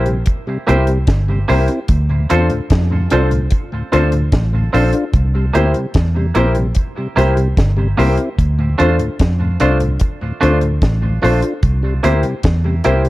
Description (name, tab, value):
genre	roots reggae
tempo	74 BPM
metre	4/4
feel	straight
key	D minor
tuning	A4 = 441 Hz
part	semi-hollow electric guitar	accompaniment	0.0-13.0 s	A3 to C5	-23 LUFS	right 4 dB	tape echo
part	dark grand piano	stabs	0.0-13.0 s	D4 to C5	-20 LUFS	left 3 dB	none
part	vintage muted fingered electric bass	bass	0.0-13.1 s	G1 to F2	-15 LUFS	equal	none
part	mellow tonewheel organ	accompaniment	0.1-13.1 s	D2 to F4	-22 LUFS	equal	slow rotary speaker
part	deep reggae drum kit	drums	0.1-13.1 s	hi-hat, kick drum, snare drum	-17 LUFS	equal	none
room	small room ambience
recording	echo-heavy mix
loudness	-13 LUFS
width	side -17 dB against mid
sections	0.0-13.1 A section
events	none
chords	0.0 C7; 1.9 Dm7; 5.1 C7; 8.4 Dm7; 11.6 C7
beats	0.27 1.08 | 1.89 2.70 3.51 4.33 | 5.14 5.95 6.76 7.57 | 8.38 9.20 10.01 10.82 | 11.63 12.44